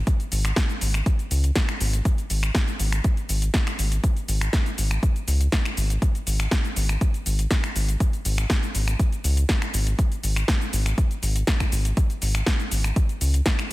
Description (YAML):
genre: progressive house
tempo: 121 BPM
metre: 4/4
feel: straight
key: unclear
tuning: A4 = 440 Hz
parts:
  - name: round analog bass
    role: bass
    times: 0.0-13.7 s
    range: G#1 to C#2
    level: -22 LUFS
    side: equal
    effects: sidechain pumping
  - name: deep house drum kit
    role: drums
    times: 0.1-13.7 s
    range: finger snaps, hi-hat, shaker, snare drum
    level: -27 LUFS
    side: equal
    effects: overdrive, sidechain pumping on hats, sidechain pumping on cymbals, sidechain pumping on perc
  - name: electronic kick drum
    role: drums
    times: 0.1-13.6 s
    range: none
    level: -22 LUFS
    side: equal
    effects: overdrive
room: little or no reverb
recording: dense, heavily limited modern master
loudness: -21 LUFS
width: side -19 dB against mid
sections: 0.0-13.7 A section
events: none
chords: none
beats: | 0.07 0.57 1.06 1.56 | 2.05 2.55 3.04 3.54 | 4.04 4.53 5.03 5.52 | 6.02 6.52 7.01 7.51 | 8.00 8.50 8.99 9.49 | 9.99 10.48 10.98 11.47 | 11.97 12.47 12.96 13.46